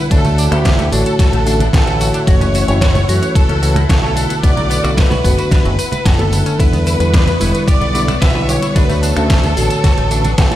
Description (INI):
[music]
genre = nu-disco, nu disco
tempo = 111 BPM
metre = 4/4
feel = straight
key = unclear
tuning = A4 = 443 Hz
[part]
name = clear studio violin section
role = melody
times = 0.0-10.6 s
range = G4 to E5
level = -20 LUFS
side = equal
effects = ping-pong delay
[part]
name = bell-like tine electric piano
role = accompaniment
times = 0.0-10.6 s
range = D3 to C#5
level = -19 LUFS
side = equal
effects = phaser, ping-pong delay
[part]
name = lush unison pad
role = sustained chords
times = 0.0-10.6 s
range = B3 to C#6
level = -26 LUFS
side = equal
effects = chorus, phaser, sidechain pumping
[part]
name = direct-recorded clean electric guitar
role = riff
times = 0.1-10.6 s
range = F#3 to C#5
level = -27 LUFS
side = left 3 dB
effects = analog chorus
[part]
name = fingered electric bass with an envelope filter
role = bass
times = 0.1-10.6 s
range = E1 to F#2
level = -16 LUFS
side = equal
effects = none
[part]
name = electronic kick drum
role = drums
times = 0.1-10.5 s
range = none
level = -13 LUFS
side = equal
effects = none
[part]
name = pop drum kit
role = drums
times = 0.1-10.6 s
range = finger snaps, hi-hat, ride cymbal, snare drum, tambourine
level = -22 LUFS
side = equal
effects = overdrive
[part]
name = cabasa, congas and bongos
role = percussion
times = 0.1-10.6 s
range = none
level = -23 LUFS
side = right 3 dB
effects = none
[sound]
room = digital ambience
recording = played on a big sound system in a bare room, large studio reverb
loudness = -11 LUFS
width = side -13 dB against mid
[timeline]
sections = 0.0-10.6 A section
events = none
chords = 0.1 Dmaj7; 2.3 F#m7; 6.6 Em7; 8.8 Dmaj7